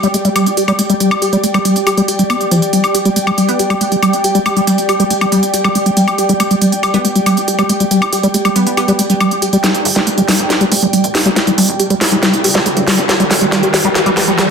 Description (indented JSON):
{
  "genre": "psychedelic trance",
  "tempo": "139 BPM",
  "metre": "4/4",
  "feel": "straight",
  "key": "unclear",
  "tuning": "A4 = 440 Hz",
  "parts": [
    { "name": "liquid acid bass", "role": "riff", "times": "0.0-14.5 s", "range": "F3 to G4", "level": "-14 LUFS", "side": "equal", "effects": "chorus, auto-pan, digital delay" },
    { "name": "garage drum kit", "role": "drums", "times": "0.0-14.5 s", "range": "hi-hat, snare drum, woodblock", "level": "-15 LUFS", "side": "equal", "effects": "none" },
    { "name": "ethereal airy pad", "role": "texture", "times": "0.0-14.5 s", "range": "G4 to G5", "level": "-19 LUFS", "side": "right 1 dB", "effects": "ensemble chorus, built-in reverb" },
    { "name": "resonant blip pluck", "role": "second line", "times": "3.5-9.0 s", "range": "G3 to B3", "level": "-25 LUFS", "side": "right 4 dB", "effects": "phaser, lush chorus, high-pass filter, digital delay" },
    { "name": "riser", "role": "sound effects", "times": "10.9-14.5 s", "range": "none", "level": "-23 LUFS", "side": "equal", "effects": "none" },
    { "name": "plucky analog bass", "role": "bass", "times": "9.9-14.3 s", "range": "F1 to G2", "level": "-26 LUFS", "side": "equal", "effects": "none" }
  ],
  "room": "wet plate reverb, RT60 1.3 s",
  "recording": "dense, heavily limited modern master",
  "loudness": "-10 LUFS",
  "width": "side -6 dB against mid",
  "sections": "0.0-9.6 A section; 9.6-14.5 B section",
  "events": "build-up 9.6-14.5; drum fill 9.6-14.5; filter sweep on acid bass 9.6-14.5; riser 10.9-14.5",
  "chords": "0.0 G5",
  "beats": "0.14 0.57 | 1.00 1.44 1.87 2.30 | 2.73 3.16 3.59 4.03 | 4.46 4.89 5.32 5.75 | 6.18 6.62 7.05 7.48 | 7.91 8.34 8.77 9.21 | 9.64 10.07 10.50 10.93 | 11.36 11.79 12.23 12.66 | 13.09 13.52 13.95 14.38"
}